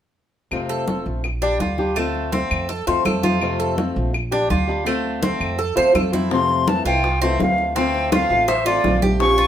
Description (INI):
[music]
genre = latin, Cuban son and guajira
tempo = 166 BPM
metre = 4/4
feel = straight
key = F major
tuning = A4 = 442 Hz
[part]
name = fingerpicked swing-style acoustic guitar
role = accompaniment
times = 0.5-9.5 s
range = C3 to G4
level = -24 LUFS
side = left 3 dB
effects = none
[part]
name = upright bass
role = bass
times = 0.5-9.5 s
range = F1 to F2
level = -26 LUFS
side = right 1 dB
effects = none
[part]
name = claves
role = percussion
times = 0.5-6.1 s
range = none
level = -28 LUFS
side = left 4 dB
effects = none
[part]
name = congas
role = percussion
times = 0.5-9.5 s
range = none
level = -24 LUFS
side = left 1 dB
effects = none
[part]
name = Cuban tres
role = arpeggios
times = 0.7-9.5 s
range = A3 to C5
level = -22 LUFS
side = right 2 dB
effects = none
[part]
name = bright silver concert flute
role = melody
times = 6.3-9.5 s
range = D5 to Db6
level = -20 LUFS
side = left 1 dB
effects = none
[part]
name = bongos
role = percussion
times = 6.3-9.5 s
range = none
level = -29 LUFS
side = left 4 dB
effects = none
[sound]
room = moderate studio reverb, RT60 0.6 s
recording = minimal, uncompressed stereo recording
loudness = -17 LUFS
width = side -10 dB against mid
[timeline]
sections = 0.5-6.3 A section; 6.3-9.5 B section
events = none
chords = 0.5 F; 1.2 Bb6; 2.0 Dm7; 2.7 F; 4.1 Bb6; 4.9 Dm7; 5.6 F; 6.3 Fmaj7; 7.8 Dm7